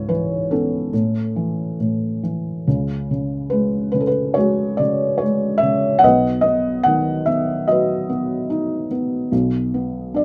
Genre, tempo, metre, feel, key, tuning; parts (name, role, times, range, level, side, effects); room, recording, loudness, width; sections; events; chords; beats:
classical, lyrical solo piano; 72 BPM; 4/4; rubato; A4 = 443 Hz
felt-muted upright piano; solo; 0.0-10.2 s; B1 to F#5; -20 LUFS; equal
little or no reverb; close, detailed microphones; -20 LUFS; mono
0.0-2.7 A section; 2.7-10.2 B section
0.0 C#m7; 0.9 A; 2.7 C#sus4; 6.0 B; 9.3 G/B (rootless)
0.08 0.93 1.80 | 2.66 3.52 4.37 5.21 | 6.03 6.85 7.68 8.50 | 9.32 10.15